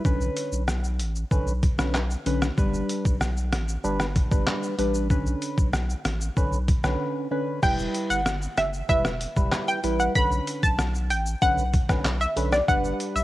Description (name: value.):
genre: dancehall.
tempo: 95 BPM.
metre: 4/4.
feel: straight.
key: B minor.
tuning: A4 = 439 Hz.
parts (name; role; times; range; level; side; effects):
percussive organ stab; accompaniment; 0.0-13.2 s; D3 to B4; -28 LUFS; equal; chorus, phaser, sidechain pumping, cassette tape.
saturated sub bass; bass; 0.1-13.2 s; E1 to B1; -28 LUFS; equal; none.
trip hop sampler-style drum kit; drums; 0.1-13.2 s; crash cymbal, handclaps, hi-hat, kick drum, rim click, shaker; -26 LUFS; equal; cassette tape.
analog pluck; melody; 7.6-13.2 s; D5 to B5; -25 LUFS; equal; chorus, analog delay.
room: light reverb, digital ambience.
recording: home recording on cassette.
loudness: -22 LUFS.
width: side -16 dB against mid.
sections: 0.0-7.6 A section; 7.6-13.2 B section.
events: break 7.0-7.6.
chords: 0.1 Bmadd9; 2.6 G; 5.1 Bmadd9; 7.6 Em; 10.2 Bmadd9; 12.7 G.